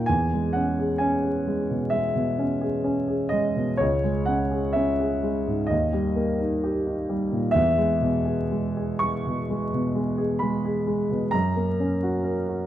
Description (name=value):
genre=classical, romantic nocturne for solo piano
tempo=65 BPM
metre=4/4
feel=rubato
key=unclear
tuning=A4 = 440 Hz
part: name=warm grand piano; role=solo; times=0.0-12.7 s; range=C#2 to C#6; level=-22 LUFS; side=equal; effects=none
room=moderate recital hall reverb, RT60 1.5 s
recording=close, detailed microphones, vinyl crackle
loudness=-22 LUFS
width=side -12 dB against mid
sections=0.0-12.7 A section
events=none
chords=0.1 E6; 3.8 C#m; 5.7 D#; 7.5 E; 11.3 F#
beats=| 0.09 1.01 1.94 2.86 | 3.81 4.76 5.70 6.62 | 7.54 8.50 9.49 10.41 | 11.33 12.26